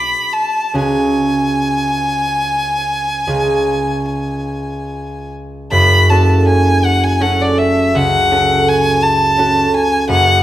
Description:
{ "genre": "classical, romantic duo for violin and harp", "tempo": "46-57 BPM (dotted quarters)", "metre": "12/8", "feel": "rubato", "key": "F# minor", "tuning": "A4 = 440 Hz", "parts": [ { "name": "clear violin", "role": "melody", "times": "0.0-10.4 s", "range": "D5 to B5", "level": "-15 LUFS", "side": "left 1 dB", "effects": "none" }, { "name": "concert harp", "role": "accompaniment", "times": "0.0-10.4 s", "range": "F#1 to A4", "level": "-15 LUFS", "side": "right 1 dB", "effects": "none" } ], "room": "wet recital hall reverb, RT60 1.5 s", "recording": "none", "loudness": "-12 LUFS", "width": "side -13 dB against mid", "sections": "0.0-5.7 A section; 5.7-10.4 B section", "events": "none", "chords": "0.0 G#dim/B; 0.7 C#sus4; 3.3 C#; 5.7 F#m" }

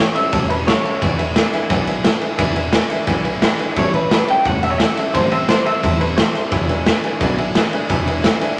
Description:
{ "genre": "rockabilly", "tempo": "174 BPM", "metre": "4/4", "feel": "straight", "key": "E mixolydian", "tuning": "A4 = 438 Hz", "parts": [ { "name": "electric guitar through a small old amp", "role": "melody", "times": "0.0-1.0, 3.8-6.5 s", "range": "B4 to G5", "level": "-22 LUFS", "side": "equal", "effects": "spring reverb" }, { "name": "picked steel-string acoustic guitar", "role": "accompaniment", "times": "0.0-8.6 s", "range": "E2 to E4", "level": "-26 LUFS", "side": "equal", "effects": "none" }, { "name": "tack piano", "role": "accompaniment", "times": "0.0-8.5 s", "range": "B4 to B5", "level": "-28 LUFS", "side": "equal", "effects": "none" }, { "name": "upright bass", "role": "bass", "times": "0.1-8.4 s", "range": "E1 to E2", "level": "-26 LUFS", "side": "equal", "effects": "none" }, { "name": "raw garage drum kit", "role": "drums", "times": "0.2-8.5 s", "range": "kick drum, ride cymbal, snare drum", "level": "-20 LUFS", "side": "equal", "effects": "none" } ], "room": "wet studio reverb, RT60 0.6 s", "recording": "none", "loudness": "-17 LUFS", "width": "mono", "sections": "0.0-8.6 A section", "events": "none", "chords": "0.0 A7; 1.0 E7; 3.8 A7; 5.1 Am7; 6.5 E7" }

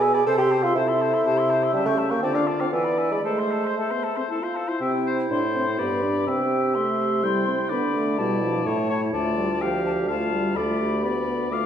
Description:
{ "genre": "quick classical-period movement for wind quintet", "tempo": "114-129 BPM", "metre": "3/4", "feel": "rubato", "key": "A minor, C major from 4.8 s", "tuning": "A4 = 439 Hz", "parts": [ { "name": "hollow concert flute", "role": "melody", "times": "0.0-11.7 s", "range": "G5 to D6", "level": "-30 LUFS", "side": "left 6 dB", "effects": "none" }, { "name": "clear oboe", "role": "second line", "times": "0.0-11.7 s", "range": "A4 to G5", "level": "-30 LUFS", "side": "left 3 dB", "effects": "none" }, { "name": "clear French horn", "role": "accompaniment", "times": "0.0-11.7 s", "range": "B2 to F4", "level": "-28 LUFS", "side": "left 1 dB", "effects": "none" }, { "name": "warm bassoon", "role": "bass", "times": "0.0-11.7 s", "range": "D2 to A4", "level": "-24 LUFS", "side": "right 1 dB", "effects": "none" }, { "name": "warm clarinet", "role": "accompaniment", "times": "0.3-11.7 s", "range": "D4 to D5", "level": "-29 LUFS", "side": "right 3 dB", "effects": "none" } ], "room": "wet recital hall reverb, RT60 1.7 s", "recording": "heard from further back in the room, nothing above 10.4 kHz", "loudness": "-21 LUFS", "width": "side -9 dB against mid", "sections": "0.0-4.8 A section; 4.8-11.7 B section", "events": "none", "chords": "0.3 Am/C; 1.7 A7/C#; 2.2 Dm; 2.7 E7; 3.2 Am; 4.8 C; 5.8 G; 6.3 C; 7.7 Dm; 8.7 A; 9.1 Dm; 10.6 Bm7b5/D" }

